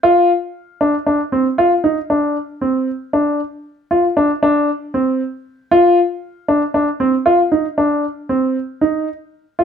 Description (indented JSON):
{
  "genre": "progressive instrumental, progressive",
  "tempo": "232 BPM (eighths)",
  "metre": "11/8",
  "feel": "straight",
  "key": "unclear",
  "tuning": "A4 = 440 Hz",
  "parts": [
    { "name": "warm grand piano", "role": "solo", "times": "0.0-9.6 s", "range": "C4 to F4", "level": "-14 LUFS", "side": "equal", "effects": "none" }
  ],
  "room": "moderate studio reverb, RT60 0.8 s",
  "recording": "none",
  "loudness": "-14 LUFS",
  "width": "side -7 dB against mid",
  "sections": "0.0-9.6 A section",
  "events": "none",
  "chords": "none",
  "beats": "| 0.04 0.29 0.55 0.81 1.07 1.32 1.58 1.84 2.10 2.35 2.61 | 2.87 3.13 3.39 3.65 3.90 4.16 4.42 4.68 4.94 5.20 5.45 | 5.71 5.97 6.23 6.49 6.75 7.00 7.26 7.52 7.78 8.04 8.29 | 8.55 8.81 9.07 9.33 9.59"
}